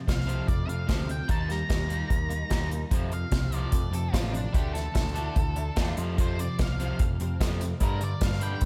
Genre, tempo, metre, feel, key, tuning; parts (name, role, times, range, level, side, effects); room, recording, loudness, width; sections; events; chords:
indie rock; 147 BPM; 4/4; straight; A4 = 440 Hz
overdriven electric guitar; riff; 0.0-8.7 s; F2 to Eb4; -39 LUFS; equal; slapback echo
twelve-string electric guitar; riff; 0.0-8.7 s; F2 to Eb4; -38 LUFS; equal; ensemble chorus, slapback echo, digital delay
octave-fuzz lead guitar; melody; 0.1-8.6 s; D4 to Bb5; -39 LUFS; equal; distortion, slapback echo, digital delay
growling picked electric bass; bass; 0.1-8.7 s; A1 to G2; -33 LUFS; equal; overdrive
unplugged drum kit; drums; 0.1-8.7 s; hi-hat, kick drum, snare drum; -30 LUFS; equal
light reverb, studio ambience; -28 LUFS; mono
0.0-8.7 A section
lead electric guitar solo 0.0-8.7
0.0 F; 1.3 Eb; 2.9 F; 4.6 Dsus2; 6.0 F; 7.8 G5